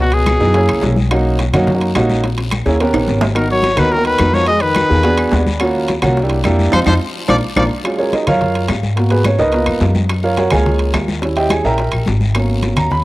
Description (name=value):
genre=Afro-Cuban jazz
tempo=214 BPM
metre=4/4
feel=straight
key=Eb minor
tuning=A4 = 439 Hz
part: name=clear trumpet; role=melody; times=0.0-1.0, 3.4-7.6 s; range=Gb4 to Eb5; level=-18 LUFS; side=equal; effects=cassette tape
part: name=warm trombone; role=second line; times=0.0-0.6, 3.4-7.6 s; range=Cb3 to Ab3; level=-23 LUFS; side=left 3 dB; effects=none
part: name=upright bass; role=bass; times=0.0-13.0 s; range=Ab1 to Ab2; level=-17 LUFS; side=equal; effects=none
part: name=guiro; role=percussion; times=0.0-13.0 s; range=none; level=-32 LUFS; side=left 5 dB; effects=none
part: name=bongos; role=percussion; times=0.1-13.0 s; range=none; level=-28 LUFS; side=left 4 dB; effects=none
part: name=congas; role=percussion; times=0.1-13.0 s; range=none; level=-23 LUFS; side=left 1 dB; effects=none
part: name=timbales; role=percussion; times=0.1-12.9 s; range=none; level=-24 LUFS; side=right 3 dB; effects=none
part: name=claves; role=percussion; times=0.3-12.9 s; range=none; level=-29 LUFS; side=left 2 dB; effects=none
part: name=warm grand piano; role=accompaniment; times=0.4-13.0 s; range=Gb3 to Cb6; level=-17 LUFS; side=right 2 dB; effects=none
room=light reverb, small room ambience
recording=home recording on cassette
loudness=-12 LUFS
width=side -18 dB against mid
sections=0.0-7.8 A section; 7.8-13.0 B section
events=drum fill 2.2-3.4, 7.0-7.8; grand piano fill 5.0-5.6; band accent 6.7-7.8; grand piano solo 7.8-13.0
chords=0.0 Dbm9; 0.6 Gb9; 1.1 Bmaj9; 2.2 Bbm7b5; 2.8 Eb7b13; 3.4 Abm9; 4.5 Fm7b5; 5.0 E9; 5.6 Ebm9; 6.2 C7; 6.7 F5; 7.3 Bb; 7.8 Ebm11; 9.0 Abm9; 9.5 Db13; 10.1 Gbmaj9; 11.2 Eb7b9; 12.3 Abm11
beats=0.27 0.55 0.83 | 1.11 1.39 1.67 1.95 | 2.23 2.51 2.79 3.08 | 3.35 3.64 3.92 4.20 | 4.48 4.76 5.04 5.32 | 5.60 5.88 6.16 6.44 | 6.72 7.00 7.29 7.57 | 7.85 8.13 8.41 8.69 | 8.97 9.25 9.54 9.82 | 10.10 10.38 10.66 10.94 | 11.22 11.51 11.79 12.07 | 12.35 12.63 12.91